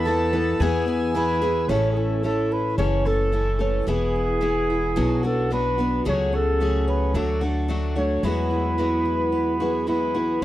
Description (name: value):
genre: acoustic folk duo or small band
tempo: 110 BPM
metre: 4/4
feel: straight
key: unclear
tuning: A4 = 440 Hz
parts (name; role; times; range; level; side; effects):
- accordion; second line; 0.0-1.4 s; G#5 to A5; -29 LUFS; right 1 dB; none
- picked steel-string acoustic guitar; accompaniment; 0.0-10.4 s; F#2 to A4; -26 LUFS; left 4 dB; none
- chamber organ, flutes; sustained chords; 0.0-1.7 s; B4 to E6; -32 LUFS; left 2 dB; none
- fingerpicked twelve-string acoustic guitar; arpeggios; 0.0-10.4 s; F#3 to A4; -27 LUFS; right 4 dB; none
- upright bass; bass; 0.0-10.4 s; E1 to E2; -26 LUFS; equal; none
- warm flugelhorn; melody; 1.2-10.4 s; G#4 to C#5; -25 LUFS; equal; none
room: little or no reverb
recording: dry, close 1970s-style studio recording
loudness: -20 LUFS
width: side -14 dB against mid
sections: 0.0-1.7 A section; 1.7-10.4 B section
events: accordion solo 0.0-1.7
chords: 0.0 Esus4; 0.6 E; 1.7 A; 2.8 F#m7; 3.9 E; 5.0 Bm; 6.1 F#madd9/C#; 7.1 D; 8.2 Eadd9